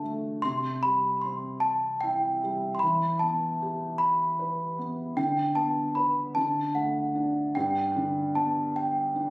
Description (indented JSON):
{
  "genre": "children's music, lullaby",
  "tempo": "50 BPM (dotted quarters)",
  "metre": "6/8",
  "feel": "straight",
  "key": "G major",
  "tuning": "A4 = 440 Hz",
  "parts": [
    { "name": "celesta", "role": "melody", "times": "0.0-9.3 s", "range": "F#5 to C6", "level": "-26 LUFS", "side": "equal", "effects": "none" },
    { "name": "felt-muted upright piano", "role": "accompaniment", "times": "0.0-9.3 s", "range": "G2 to B4", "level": "-30 LUFS", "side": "equal", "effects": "none" }
  ],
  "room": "moderate scoring stage reverb, RT60 1.5 s",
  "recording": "recorded on a phone in the room, studio reverb, compression",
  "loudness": "-25 LUFS",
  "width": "side -22 dB against mid",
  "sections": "0.0-9.3 A section",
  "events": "none",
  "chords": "0.4 C; 2.8 Em; 5.2 Gadd9/D; 6.4 D; 7.6 G"
}